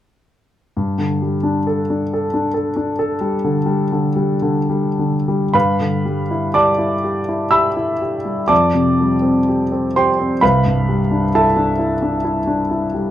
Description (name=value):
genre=classical, impressionist solo piano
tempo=52-69 BPM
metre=5/4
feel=rubato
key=G mixolydian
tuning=A4 = 440 Hz
part: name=clear grand piano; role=solo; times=0.8-13.1 s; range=C2 to E6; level=-15 LUFS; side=equal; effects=none
room=light reverb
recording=dark, warm production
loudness=-15 LUFS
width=side -12 dB against mid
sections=0.8-5.5 A section; 5.5-13.1 B section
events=none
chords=0.8 Gsus2; 5.5 G69; 8.5 F69; 10.4 C69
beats=| 0.76 1.69 2.56 3.46 4.44 | 5.54 6.57 7.54 8.51 9.48 | 10.42 11.32 12.23